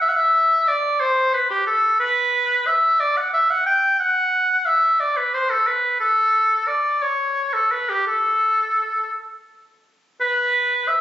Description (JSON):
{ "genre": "classical, baroque-style fantasia for unaccompanied oboe", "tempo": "60 BPM (dotted quarters)", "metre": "6/8", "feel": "rubato", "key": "unclear", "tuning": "A4 = 440 Hz", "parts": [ { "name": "clear oboe", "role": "solo", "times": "0.0-11.0 s", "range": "G4 to G5", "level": "-17 LUFS", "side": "equal", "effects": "none" } ], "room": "moderate recital hall reverb, RT60 1.6 s", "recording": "recorded on a phone in the room, club reverb, compression, nothing above 7.8 kHz", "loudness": "-17 LUFS", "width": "side -12 dB against mid", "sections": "0.0-10.2 A section", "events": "none", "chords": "none" }